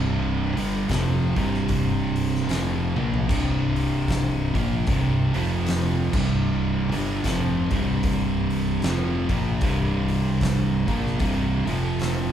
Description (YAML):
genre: stoner and doom metal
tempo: 76 BPM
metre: 4/4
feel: swing 59% on 8ths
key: unclear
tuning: A4 = 440 Hz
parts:
  - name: distorted electric guitar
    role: riff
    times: 0.0-12.3 s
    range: C2 to Bb3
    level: -29 LUFS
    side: equal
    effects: distortion
  - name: thick fuzz guitar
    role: riff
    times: 0.0-12.3 s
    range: C2 to Bb3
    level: -27 LUFS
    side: left 4 dB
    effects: distortion
  - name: thick fuzz guitar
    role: riff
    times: 0.0-12.3 s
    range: C2 to Bb3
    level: -27 LUFS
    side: right 6 dB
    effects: distortion
  - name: growling fingered electric bass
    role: bass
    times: 0.0-12.3 s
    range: C1 to Bb1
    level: -29 LUFS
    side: equal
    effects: overdrive, tube saturation
  - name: oversized low-tuned drum kit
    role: drums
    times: 0.6-12.2 s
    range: crash cymbal, hi-hat, kick drum, snare drum, toms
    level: -27 LUFS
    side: equal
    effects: none
room: moderate large studio reverb, RT60 1.1 s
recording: band playing live in one room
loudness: -21 LUFS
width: side -10 dB against mid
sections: 0.0-12.3 A section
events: drum fill 2.9-3.3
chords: 0.0 C5; 5.3 F5; 6.1 C5; 11.6 F5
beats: | 0.10 0.90 1.70 2.49 | 3.29 4.08 4.87 5.67 | 6.46 7.25 8.04 8.83 | 9.62 10.41 11.21 12.00